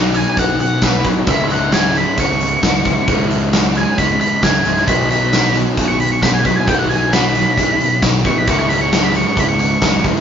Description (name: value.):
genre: classic rock.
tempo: 133 BPM.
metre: 4/4.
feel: straight.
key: C# minor.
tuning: A4 = 440 Hz.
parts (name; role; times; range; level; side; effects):
crunchy overdriven guitar; riff; 0.0-10.2 s; C#2 to B4; -21 LUFS; left 4 dB; none.
sludgy distorted guitar; riff; 0.0-10.2 s; C#2 to B4; -22 LUFS; right 5 dB; overdrive.
growling fingered electric bass; bass; 0.0-10.1 s; B1 to C#2; -24 LUFS; equal; overdrive.
big rock drum kit; drums; 0.1-10.2 s; hi-hat, kick drum, snare drum, tambourine; -16 LUFS; equal; none.
octave-fuzz lead guitar; melody; 0.2-10.0 s; B4 to C#6; -18 LUFS; right 1 dB; wah, distortion.
room: moderate stone room reverb, RT60 1.2 s.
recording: rough rehearsal-room recording, tube saturation, nothing above 7.5 kHz.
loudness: -12 LUFS.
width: side -8 dB against mid.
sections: 0.0-10.2 A section.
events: lead electric guitar solo 0.0-10.2.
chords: 0.0 B; 1.3 C#m; 4.9 B; 8.5 C#m.